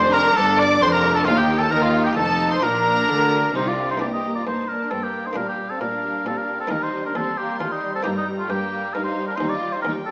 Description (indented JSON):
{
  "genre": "classical, baroque-style concerto movement with solo episodes",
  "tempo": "133 BPM",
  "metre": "3/4",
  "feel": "straight",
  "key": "Bb major, G minor from 4.0 s",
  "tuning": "A4 = 439 Hz",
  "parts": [
    { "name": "warm oboe", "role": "melody", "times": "0.0-10.1 s", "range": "Eb4 to Eb5", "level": "-26 LUFS", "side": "equal", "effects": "none" },
    { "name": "rich chamber violin section", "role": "second line", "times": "0.0-10.1 s", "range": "G3 to D5", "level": "-28 LUFS", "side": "equal", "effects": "none" },
    { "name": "buff-stop harpsichord", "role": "accompaniment", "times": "0.0-10.1 s", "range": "Eb2 to G4", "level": "-35 LUFS", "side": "equal", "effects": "none" },
    { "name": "rich chamber viola section", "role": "accompaniment", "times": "0.0-10.1 s", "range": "G3 to Eb4", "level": "-31 LUFS", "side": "equal", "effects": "none" },
    { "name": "rich chamber double bass section", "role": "bass", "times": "0.0-4.0 s", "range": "F1 to Eb2", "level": "-29 LUFS", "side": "equal", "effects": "none" },
    { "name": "rich studio cello section", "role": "bass", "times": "0.0-10.1 s", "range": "Eb2 to Eb3", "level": "-31 LUFS", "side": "equal", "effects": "none" },
    { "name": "rich chamber violin section", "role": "melody", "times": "0.1-10.1 s", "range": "Eb5 to D6", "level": "-30 LUFS", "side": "equal", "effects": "none" }
  ],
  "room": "wet recital hall reverb, RT60 1.5 s",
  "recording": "small speaker sound",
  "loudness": "-21 LUFS",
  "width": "mono",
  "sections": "0.0-4.0 A section; 4.0-10.1 B section",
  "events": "none",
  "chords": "0.0 Dm/F; 1.3 Eb; 2.2 F7; 2.6 Bb; 4.0 Gm; 5.4 Gm/Bb; 6.7 Eb; 8.1 Eb/G; 9.4 Eb"
}